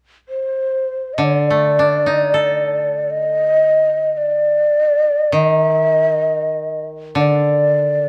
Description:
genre	japanese traditional, Japanese chamber music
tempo	free time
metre	none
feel	none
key	unclear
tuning	A4 = 441 Hz
part	breathy mellow shakuhachi	melody	0.3-8.1 s	C5 to Eb5	-17 LUFS	equal	none
part	koto	accompaniment	1.2-8.1 s	D3 to A4	-22 LUFS	equal	none
room	moderate recital hall reverb, RT60 1.7 s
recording	close, detailed microphones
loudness	-16 LUFS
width	mono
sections	0.0-8.1 A section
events	none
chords	none

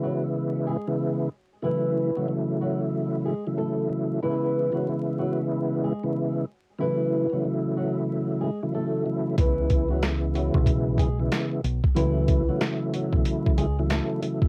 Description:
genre	hip hop, boom-bap hip-hop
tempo	93 BPM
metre	4/4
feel	swing 61% on 16ths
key	C# minor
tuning	A4 = 440 Hz
part	flamenco guitar	melody	0.0-14.2 s	E3 to A4	-32 LUFS	equal	high-pass filter, low-pass filter, analog delay
part	tonewheel organ	accompaniment	0.0-14.5 s	C#3 to E4	-28 LUFS	equal	overdrive, chorus vibrato, slow rotary speaker, high-pass filter, low-pass filter, cassette tape
part	deep dub fingered electric bass	bass	9.4-14.0 s	B1 to C#2	-29 LUFS	equal	none
part	boom bap sampler-style drum kit	drums	9.4-14.5 s	hi-hat, kick drum, snare drum	-26 LUFS	equal	cassette tape
room	light reverb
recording	home recording on cassette, vinyl crackle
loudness	-26 LUFS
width	mono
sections	0.0-9.4 A section; 9.4-14.5 B section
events	none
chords	0.0 C#m7; 1.6 F#m7/C#; 4.2 C#m7; 6.8 F#m7/C#; 9.4 C#m7; 12.0 F#m7

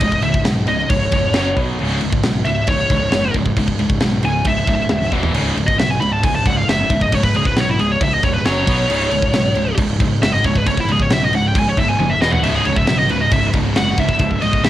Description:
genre	heavy metal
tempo	135 BPM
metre	4/4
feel	straight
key	C# minor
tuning	A4 = 439 Hz
part	high-gain lead guitar	melody	0.0-14.7 s	E4 to B5	-19 LUFS	equal	distortion, cassette tape
part	heavy high-gain guitar	riff	0.0-14.7 s	C#2 to B3	-23 LUFS	right 6 dB	distortion, cassette tape
part	high-gain distorted guitar	riff	0.0-14.7 s	C#2 to B3	-22 LUFS	left 6 dB	distortion, cassette tape
part	fuzz fingered electric bass	bass	0.0-14.7 s	C#1 to B1	-22 LUFS	equal	overdrive
part	tight metal drum kit	drums	0.0-14.7 s	crash cymbal, kick drum, snare drum, toms	-20 LUFS	equal	none
part	scooped high-gain guitar	riff	12.4-14.7 s	C#2 to C#3	-25 LUFS	right 1 dB	none
room	light reverb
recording	home recording on cassette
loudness	-14 LUFS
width	side -13 dB against mid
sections	0.0-14.7 A section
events	lead electric guitar solo 0.0-14.7; drum fill 5.1, 12.0-12.4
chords	0.0 C#5; 1.4 F#5; 1.6 B5; 1.8 C#m; 5.1 E5; 5.3 C#5; 8.5 F#5; 8.7 B5; 8.9 C#5; 12.2 E5; 12.4 C#m

